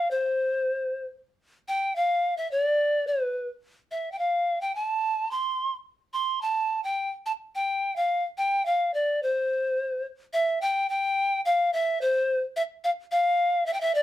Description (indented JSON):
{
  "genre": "andean folk",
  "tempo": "107 BPM",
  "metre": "2/4",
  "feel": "straight",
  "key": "unclear",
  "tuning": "A4 = 440 Hz",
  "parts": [
    { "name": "bright polished pan flute", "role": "solo", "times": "0.0-14.0 s", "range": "B4 to C6", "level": "-24 LUFS", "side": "equal", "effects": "none" }
  ],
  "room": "moderate studio reverb, RT60 0.5 s",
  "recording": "dark, warm production",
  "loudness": "-24 LUFS",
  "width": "side -13 dB against mid",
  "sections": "0.0-1.4 A section; 1.4-10.3 A section; 10.3-14.0 B section",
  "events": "none",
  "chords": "none"
}